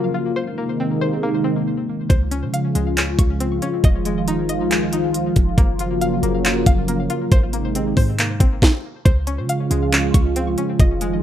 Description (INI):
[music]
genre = hip hop, atmospheric cloud-rap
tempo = 138 BPM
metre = 4/4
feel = half-time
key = Db major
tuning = A4 = 440 Hz
[part]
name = dark analog pad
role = sustained chords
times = 0.0-11.2 s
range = C3 to F4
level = -21 LUFS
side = equal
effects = chorus, sidechain pumping
[part]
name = string-like resonator pluck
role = arpeggios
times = 0.0-11.2 s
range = Ab3 to Db6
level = -28 LUFS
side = left 2 dB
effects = chorus, ping-pong delay
[part]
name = clean 808-style bass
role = bass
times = 2.1-11.2 s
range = F1 to Db3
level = -23 LUFS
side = equal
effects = none
[part]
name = trap drum kit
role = drums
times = 2.1-11.1 s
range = handclaps, hi-hat, kick drum, snare drum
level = -16 LUFS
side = equal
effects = none
[sound]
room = digital ambience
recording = rough home demo mix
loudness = -16 LUFS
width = side -11 dB against mid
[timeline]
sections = 0.0-9.1 A section; 9.1-11.2 B section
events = none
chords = 0.4 Abadd9; 2.1 Dbmaj7; 3.8 Fm7; 5.6 Gbmaj7; 7.3 Abadd9; 9.1 Dbmaj7